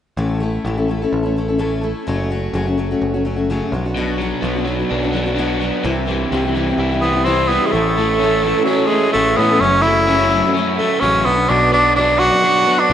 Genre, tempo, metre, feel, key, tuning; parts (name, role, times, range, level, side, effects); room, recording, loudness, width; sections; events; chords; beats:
rock; 127 BPM; 4/4; straight; A major; A4 = 441 Hz
picked steel-string acoustic guitar; accompaniment; 0.2-12.9 s; F#2 to A4; -21 LUFS; left 3 dB
picked electric bass; bass; 0.2-12.9 s; F#1 to A2; -22 LUFS; right 1 dB
crunchy overdriven guitar; riff; 4.0-12.9 s; F#2 to E4; -20 LUFS; right 1 dB
edgy tenor saxophone; melody; 7.0-12.9 s; F#3 to F#4; -14 LUFS; right 1 dB; analog delay
wet lush hall reverb, RT60 3.1 s; rough home demo mix, nothing above 10.8 kHz; -14 LUFS; side -10 dB against mid
0.2-7.7 A section; 7.7-12.9 B section
0.2 A; 2.1 F#m; 3.7 Bm; 5.8 C; 7.7 A; 9.6 F#m; 11.3 Bm
| 0.18 0.65 1.12 1.60 | 2.07 2.54 3.02 3.49 | 3.96 4.43 4.90 5.38 | 5.85 6.32 6.79 7.26 | 7.73 8.20 8.68 9.15 | 9.62 10.09 10.56 11.03 | 11.50 11.97 12.45 12.92